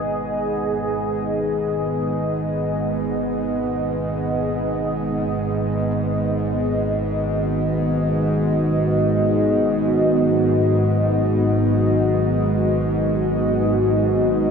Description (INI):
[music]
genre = dark ambient drone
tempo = free time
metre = none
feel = none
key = G# minor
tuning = A4 = 441 Hz
[part]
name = deep dark ambient pad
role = sustained chords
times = 0.0-14.5 s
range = G#2 to D#5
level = -20 LUFS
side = equal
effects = chorus, built-in reverb
[part]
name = tubular bells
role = arpeggios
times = 0.0-5.2 s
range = none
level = barely audible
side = none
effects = none
[part]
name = bowed-like drone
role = drone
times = 0.0-14.5 s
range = G#1 to G#2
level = -23 LUFS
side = right 1 dB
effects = built-in reverb
[sound]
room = wet cathedral reverb, RT60 5.7 s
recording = none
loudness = -18 LUFS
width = side -6 dB against mid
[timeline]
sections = 0.0-14.5 A section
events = fade-in on synth drone 0.0-14.5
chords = 0.0 G#m